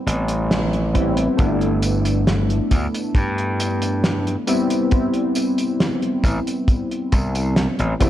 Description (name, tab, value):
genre	vaporwave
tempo	68 BPM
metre	4/4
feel	straight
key	G major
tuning	A4 = 440 Hz
part	warbly lo-fi synth keys	accompaniment	0.0-8.1 s	G3 to E4	-21 LUFS	left 1 dB	analog chorus, analog delay
part	gritty slap bass	bass	0.1-8.1 s	E1 to G2	-21 LUFS	equal	overdrive, tube saturation
part	cloth-damped thuddy drum kit	drums	0.1-8.1 s	hi-hat, snare drum, tambourine	-25 LUFS	equal	gated reverb
part	kick drum	drums	1.0-8.1 s	none	-18 LUFS	equal	none
room	moderate concert hall reverb, RT60 2.6 s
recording	cassette tape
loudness	-17 LUFS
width	side -12 dB against mid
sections	0.0-1.4 A section; 1.4-8.1 B section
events	band accent 0.5-0.9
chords	0.0 Am9; 1.4 G69; 4.5 Am9 (rootless)